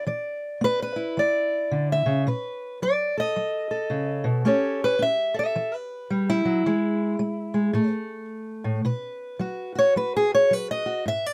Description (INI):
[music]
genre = acoustic country blues, solo or duo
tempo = 109 BPM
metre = 4/4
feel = swing 62% on 8ths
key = unclear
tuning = A4 = 440 Hz
[part]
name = fingerpicked steel-string acoustic guitar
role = solo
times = 0.0-11.3 s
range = G#2 to E5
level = -25 LUFS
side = equal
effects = none
[sound]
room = light reverb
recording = close, detailed microphones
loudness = -25 LUFS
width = mono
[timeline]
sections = 0.0-11.1 A section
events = steel-string acoustic guitar solo 0.0-11.3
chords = 0.0 E7(no3); 2.3 B7; 4.5 A7; 6.7 E; 7.8 N.C.; 8.9 B5